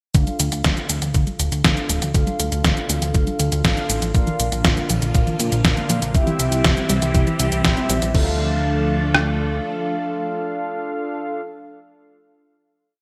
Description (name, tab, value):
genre	italo disco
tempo	120 BPM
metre	4/4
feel	straight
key	D minor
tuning	A4 = 438 Hz
part	soft round pluck	arpeggios	0.1-8.4 s	C2 to D4	-30 LUFS	equal	none
part	mellow synth brass	stabs	0.1-11.4 s	C4 to F5	-28 LUFS	equal	chorus, digital delay
part	fat analog bass	bass	0.1-9.6 s	D1 to Bb2	-25 LUFS	equal	none
part	detuned 8-bit digital drum machine	drums	0.1-9.3 s	kick drum, rim click	-22 LUFS	equal	overdrive
part	detuned 8-bit digital drum machine	drums	0.1-8.2 s	cabasa, crash cymbal, hi-hat, snare drum	-24 LUFS	equal	overdrive, gated reverb
part	phased string machine	sustained chords	4.1-11.4 s	D3 to A4	-29 LUFS	equal	ensemble chorus, phaser
room	moderate plate reverb, RT60 2.1 s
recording	bright 1980s-style digital production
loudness	-20 LUFS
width	mono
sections	0.1-8.1 verse; 8.1-12.1 final chord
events	filter sweep on analog polysynth 0.1-8.1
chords	0.1 Dm; 4.1 Bb; 6.1 C; 8.1 Dm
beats	| 0.15 0.65 1.15 1.65 | 2.15 2.65 3.15 3.65 | 4.15 4.65 5.15 5.65 | 6.15 6.65 7.15 7.65 | 8.15 8.65 9.15 9.65 | 10.15 10.65 11.15